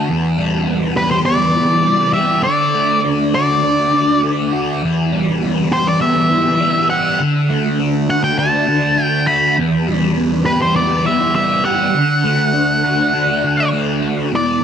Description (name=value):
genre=rock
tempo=101 BPM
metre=4/4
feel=straight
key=unclear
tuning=A4 = 437 Hz
part: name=fuzz guitar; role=riff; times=0.0-14.6 s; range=E2 to G4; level=-16 LUFS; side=equal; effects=distortion, phaser
part: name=octave-fuzz lead guitar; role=melody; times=1.0-14.6 s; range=B4 to B5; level=-17 LUFS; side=equal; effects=distortion, analog delay
room=moderate plate reverb, RT60 2.7 s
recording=dreamy mix soaked in reverb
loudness=-13 LUFS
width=side -8 dB against mid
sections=0.0-14.3 A section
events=none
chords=0.1 Em; 2.5 D; 4.8 Em; 7.2 D; 9.6 Em; 11.9 D